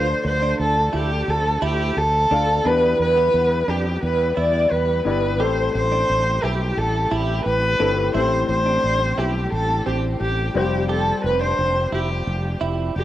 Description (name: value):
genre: piano-driven pop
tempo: 87 BPM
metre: 4/4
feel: straight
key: unclear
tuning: A4 = 440 Hz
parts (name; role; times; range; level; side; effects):
- dark cello; melody; 0.0-13.0 s; G4 to D5; -20 LUFS; equal; cassette tape
- warm upright piano; accompaniment; 0.0-13.0 s; A2 to F5; -27 LUFS; left 6 dB; cassette tape
- warm studio string section; sustained chords; 0.0-13.0 s; D3 to A4; -33 LUFS; equal; cassette tape
- direct-recorded clean electric guitar; riff; 0.0-12.9 s; B3 to G4; -29 LUFS; right 6 dB; analog chorus, cassette tape
- fretless electric bass; bass; 0.0-13.0 s; F1 to F2; -24 LUFS; equal; none
room: wet spring reverb, RT60 1.2 s, studio reverb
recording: home recording on cassette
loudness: -18 LUFS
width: side -13 dB against mid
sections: 0.0-13.0 A section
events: none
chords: 0.0 Dm; 2.7 Em7; 5.4 Am7; 10.6 Fsus2